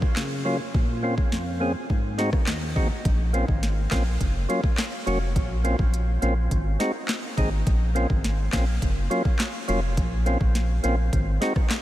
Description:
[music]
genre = dancehall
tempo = 104 BPM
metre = 4/4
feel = straight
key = Bb minor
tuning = A4 = 439 Hz
[part]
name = island pop drum kit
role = drums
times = 0.0-11.8 s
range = handclaps, hi-hat, kick drum, rim click, snare drum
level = -25 LUFS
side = equal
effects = overdrive
[part]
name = percussive tonewheel organ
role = accompaniment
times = 0.2-11.5 s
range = Eb2 to Ab4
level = -27 LUFS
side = equal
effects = overdrive, stopped rotary speaker
[part]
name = round analog bass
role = bass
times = 3.1-11.4 s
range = F1 to Bb1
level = -24 LUFS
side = equal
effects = none
[sound]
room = light reverb, digital ambience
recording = none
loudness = -22 LUFS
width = side -14 dB against mid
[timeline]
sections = 0.0-3.1 A section; 3.1-11.8 B section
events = none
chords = 0.0 Gbmaj7; 0.7 Bbmadd9; 1.9 Ab7; 3.1 Bbmadd9; 4.2 Gbmaj7; 5.4 Bbmadd9; 6.5 Ab7; 7.7 Bbmadd9; 8.8 Gbmaj7; 10.0 Bbmadd9; 11.1 Ab7

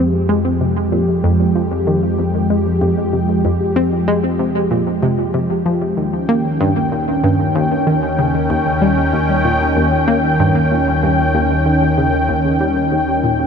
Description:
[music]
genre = ambient, sequencer-driven space music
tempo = 95 BPM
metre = 4/4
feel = straight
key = unclear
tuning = A4 = 439 Hz
[part]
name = sweeping resonant pad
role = sustained chords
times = 0.0-13.5 s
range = Eb3 to G5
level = -16 LUFS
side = equal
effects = chorus
[part]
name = analog pluck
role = riff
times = 0.0-13.5 s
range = Eb2 to C4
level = -18 LUFS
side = equal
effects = chorus, tape echo
[part]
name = fat analog bass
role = bass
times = 0.0-13.5 s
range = Eb2 to F2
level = -22 LUFS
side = right 1 dB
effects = none
[sound]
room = moderate huge ambient reverb, RT60 8.4 s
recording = none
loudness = -14 LUFS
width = side -6 dB against mid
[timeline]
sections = 0.0-13.5 A section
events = none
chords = 0.0 Fmadd9; 6.0 Eb7

